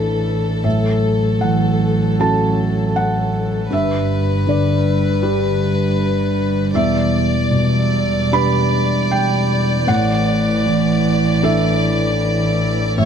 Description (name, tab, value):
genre	neoclassical piano and strings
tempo	78 BPM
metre	4/4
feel	rubato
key	unclear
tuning	A4 = 439 Hz
part	warm chamber violin section	melody	0.0-13.1 s	A4 to D5	-22 LUFS	left 3 dB	none
part	dark cello	second line	0.0-13.1 s	E3 to G3	-23 LUFS	right 6 dB	slapback echo
part	felt-muted upright piano	accompaniment	0.0-13.1 s	E2 to B5	-18 LUFS	right 1 dB	none
part	dark double bass	bass	0.0-13.1 s	E1 to A1	-20 LUFS	left 1 dB	none
room	little or no reverb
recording	close, detailed microphones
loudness	-15 LUFS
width	side -8 dB against mid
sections	0.0-13.1 A section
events	none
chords	0.0 Asus4; 0.6 F#m7/A; 3.7 G; 6.7 Em7; 9.9 Asus4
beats	| 0.65 1.42 2.20 2.96 | 3.72 4.48 5.23 5.99 | 6.75 7.51 8.32 9.11 | 9.88 10.66 11.43 12.20 | 12.97